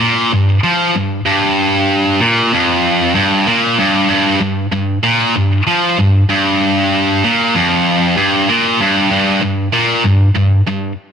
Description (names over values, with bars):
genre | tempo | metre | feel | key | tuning
rock | 96 BPM | 4/4 | straight | unclear | A4 = 437 Hz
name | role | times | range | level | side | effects
high-gain distorted guitar | solo | 0.0-10.9 s | F2 to F3 | -11 LUFS | equal | distortion
room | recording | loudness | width
light reverb | none | -11 LUFS | side -7 dB against mid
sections
0.0-9.1 A section; 9.1-11.1 B section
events
none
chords
none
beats
0.32 0.95 | 1.58 2.21 2.84 3.46 | 4.09 4.72 5.35 5.98 | 6.60 7.23 7.86 8.48 | 9.11 9.73 10.36